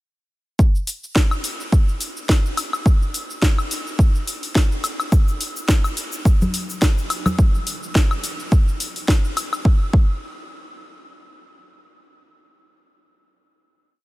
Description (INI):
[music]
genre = nu-disco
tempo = 106 BPM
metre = 4/4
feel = swing 55% on 16ths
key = none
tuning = none
[part]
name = electronic kick drum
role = drums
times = 0.6-10.1 s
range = none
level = -16 LUFS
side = equal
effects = overdrive
[part]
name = house drum kit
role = drums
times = 0.6-9.6 s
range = hi-hat, shaker, snare drum, woodblock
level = -24 LUFS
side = left 1 dB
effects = overdrive
[part]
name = egg shaker and congas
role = percussion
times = 5.1-7.4 s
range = none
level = -25 LUFS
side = equal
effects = none
[sound]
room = digital ambience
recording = none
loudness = -17 LUFS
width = side -19 dB against mid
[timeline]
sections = 0.6-9.7 drop; 9.7-11.9 final hit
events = drop 0.6-9.7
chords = none